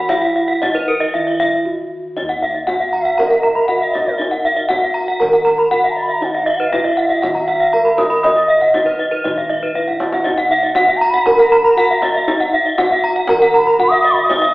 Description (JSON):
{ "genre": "Balinese gamelan", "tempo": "119 BPM", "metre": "4/4", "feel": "straight", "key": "Eb pelog", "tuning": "A4 = 445 Hz", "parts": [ { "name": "gamelan-type bronze metallophone", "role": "melody", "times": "0.0-14.5 s", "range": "Eb4 to Eb5", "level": "-17 LUFS", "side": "right 1 dB", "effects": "none" }, { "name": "gamelan-type bronze metallophone", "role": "arpeggios", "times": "0.0-14.3 s", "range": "Cb5-20c to Cb6-20c", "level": "-20 LUFS", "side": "right 1 dB", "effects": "none" }, { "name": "gamelan-type bossed gongs", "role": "bass", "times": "0.0-14.5 s", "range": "Eb2 to Eb5", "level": "-25 LUFS", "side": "equal", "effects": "none" }, { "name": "gamelan-type bronze metallophone", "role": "arpeggios", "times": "0.1-14.5 s", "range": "Bb4-30c to Eb6", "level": "-18 LUFS", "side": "left 1 dB", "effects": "none" }, { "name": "kendang", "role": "percussion", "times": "0.1-14.5 s", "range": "none", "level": "-27 LUFS", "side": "left 1 dB", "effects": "none" }, { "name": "mellow bansuri", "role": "second line", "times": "2.9-14.5 s", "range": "Bb4-34c to Eb6", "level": "-19 LUFS", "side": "right 1 dB", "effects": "none" } ], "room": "wet large studio reverb, RT60 1.4 s", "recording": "band playing live in one room, telephone sound", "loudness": "-12 LUFS", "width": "side -20 dB against mid", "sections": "0.0-2.2 A section; 2.2-14.5 B section", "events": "break 1.4-2.2; drum fill 1.8-2.2, 9.6-10.3", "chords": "none", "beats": "| 0.09 0.62 1.14 1.66 | 2.17 2.67 3.18 3.69 | 4.19 4.70 5.20 5.71 | 6.21 6.72 7.22 7.73 | 8.23 8.74 9.24 9.75 | 10.26 10.76 11.27 11.77 | 12.28 12.78 13.29 13.79 | 14.30" }